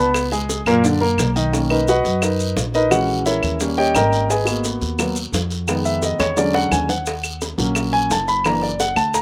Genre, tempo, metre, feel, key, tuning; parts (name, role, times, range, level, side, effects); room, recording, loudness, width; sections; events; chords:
Afro-Cuban jazz; 173 BPM; 4/4; straight; B major; A4 = 442 Hz
warm grand piano; accompaniment; 0.0-9.2 s; A#2 to B5; -20 LUFS; equal; slapback echo
upright bass; bass; 0.0-9.2 s; F#1 to F#2; -27 LUFS; equal
bongos; percussion; 0.1-9.2 s; -30 LUFS; equal
claves; percussion; 0.1-9.1 s; -29 LUFS; equal
guiro; percussion; 0.1-9.2 s; -33 LUFS; equal
maracas; percussion; 0.2-9.2 s; -32 LUFS; equal
little or no reverb; recorded outdoors, with no room sound; -19 LUFS; mono
0.0-1.5 A section; 1.5-9.2 A section
grand piano solo 1.5-9.2; drum fill 6.2-7.1
0.1 C#5; 0.8 F#aug; 1.5 Bmaj7; 2.9 A#m7b5; 3.6 D#7; 4.3 G#m7; 5.7 Fm7b5; 6.4 E13; 7.1 D#m7; 8.4 F#aug7